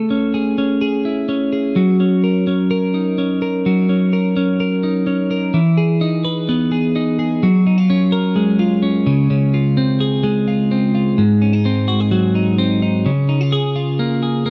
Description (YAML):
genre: indie pop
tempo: 128 BPM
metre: 4/4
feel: straight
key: Db major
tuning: A4 = 440 Hz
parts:
  - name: twelve-string electric guitar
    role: solo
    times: 0.0-14.5 s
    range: Ab2 to B4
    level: -17 LUFS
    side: equal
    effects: none
room: light reverb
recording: rough home demo mix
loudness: -17 LUFS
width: mono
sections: 0.0-5.5 A section; 5.5-13.1 B section; 13.1-14.5 C section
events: none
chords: 0.0 Amaj7; 1.8 Gb6; 5.5 Emaj7; 7.4 Gbmaj9; 9.1 Dbmaj7; 11.2 Ab7; 13.1 Db6